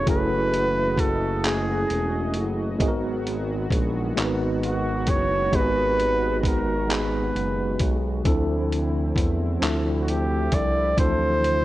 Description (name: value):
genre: slow six-eight R&B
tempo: 44 BPM (dotted quarters)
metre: 6/8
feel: straight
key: unclear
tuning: A4 = 442 Hz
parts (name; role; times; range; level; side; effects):
- warm flugelhorn; melody; 0.0-11.6 s; F#4 to D5; -25 LUFS; right 1 dB; none
- mellow tine electric piano; accompaniment; 0.0-11.6 s; E3 to B4; -26 LUFS; equal; medium stereo tremolo
- chorused pulse-width pad; sustained chords; 0.0-11.6 s; C3 to D#5; -34 LUFS; equal; none
- smooth synth bass; bass; 0.0-11.6 s; E1 to E2; -27 LUFS; equal; none
- dusty soul sampler-style drum kit; drums; 0.1-11.6 s; handclaps, hi-hat, kick drum; -25 LUFS; equal; none
room: light reverb, digital ambience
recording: worn, warbling old tape, cassette tape, warbly pitch drift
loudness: -21 LUFS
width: side -16 dB against mid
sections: 0.0-11.6 A section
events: none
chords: 0.0 F#m9; 2.8 G#m9; 8.3 Dm9